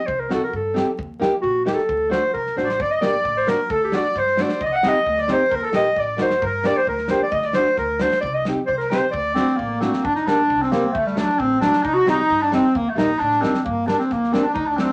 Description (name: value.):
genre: klezmer.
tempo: 132 BPM.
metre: 2/4.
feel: straight.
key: unclear.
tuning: A4 = 440 Hz.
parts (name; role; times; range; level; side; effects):
warm clarinet; melody; 0.0-14.9 s; G3 to F#5; -22 LUFS; equal; none.
upright bass; bass; 0.1-14.8 s; G1 to G2; -36 LUFS; equal; none.
modern studio drum kit; drums; 0.1-14.9 s; kick drum, snare drum; -32 LUFS; equal; none.
nylon-string guitar; accompaniment; 0.3-14.9 s; F#3 to G4; -26 LUFS; equal; none.
accordion; second line; 2.1-14.9 s; A3 to F#5; -28 LUFS; equal; none.
room: wet small room ambience, RT60 0.5 s.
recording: tube saturation, vinyl crackle.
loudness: -20 LUFS.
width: mono.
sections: 0.0-2.8 A section; 2.8-10.0 B section; 10.0-14.9 B section.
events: drum fill 2.6.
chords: 0.0 Cm; 1.0 Eb; 1.9 D; 2.8 Gm; 3.7 D; 4.6 Cm; 5.5 Eb; 6.4 Gm; 7.3 D; 8.2 Cm; 9.1 D; 10.0 Gm; 10.9 D; 11.8 Cm; 12.8 Eb; 13.7 Gm.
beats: | 0.07 0.53 | 0.98 1.43 | 1.89 2.34 | 2.79 3.25 | 3.70 4.15 | 4.60 5.06 | 5.51 5.96 | 6.42 6.87 | 7.32 7.78 | 8.23 8.68 | 9.13 9.59 | 10.04 10.49 | 10.95 11.40 | 11.85 12.30 | 12.75 13.20 | 13.65 14.10 | 14.55.